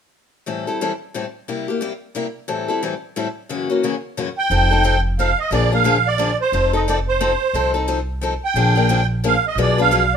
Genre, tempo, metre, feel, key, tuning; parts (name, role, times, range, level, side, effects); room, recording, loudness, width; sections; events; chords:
acoustic string swing (jazz manouche); 178 BPM; 3/4; swing 60% on 8ths; A4 = 440 Hz
picked steel-string acoustic guitar; accompaniment; 0.5-10.0 s; Gb2 to B4; -21 LUFS; left 4 dB
musette accordion; melody; 4.4-10.2 s; C5 to G5; -18 LUFS; right 4 dB
upright bass; bass; 4.5-10.2 s; F1 to C2; -20 LUFS; equal
moderate studio reverb, RT60 0.8 s; minimal, uncompressed stereo recording; -17 LUFS; side -7 dB against mid
0.5-4.5 A section; 4.5-10.2 B section
0.5 Am7; 1.5 C7; 2.5 Am7; 3.5 Gb7; 4.5 F7; 5.5 Bb7; 6.5 F7; 8.5 Bb7; 9.6 Bdim7